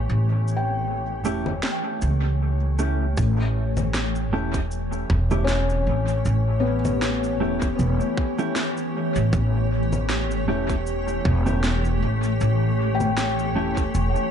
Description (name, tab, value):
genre	ambient dub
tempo	78 BPM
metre	4/4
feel	swing 55% on 16ths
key	A mixolydian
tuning	A4 = 440 Hz
part	granular cloud pad	sustained chords	0.0-14.3 s	E3 to C#5	-27 LUFS	left 1 dB	built-in reverb
part	felt-muted upright piano	arpeggios	0.0-14.3 s	B3 to G5	-30 LUFS	left 4 dB	tape echo
part	upright bass	bass	0.0-14.1 s	E1 to C#2	-23 LUFS	equal	tube saturation
part	electronic cabasa, congas and snare drum	drums	0.5-14.3 s	none	-31 LUFS	left 1 dB	dub echo
part	mellow electric guitar	stabs	1.2-13.8 s	A3 to G4	-30 LUFS	right 3 dB	wide subtle chorus, dub echo
part	electronic kick drum	drums	3.2-13.9 s	none	-26 LUFS	equal	none
room	light reverb, digital ambience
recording	nothing above 10.6 kHz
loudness	-20 LUFS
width	side -8 dB against mid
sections	0.0-3.2 A section; 3.2-14.3 B section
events	kick drops out 0.1-3.2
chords	0.0 A7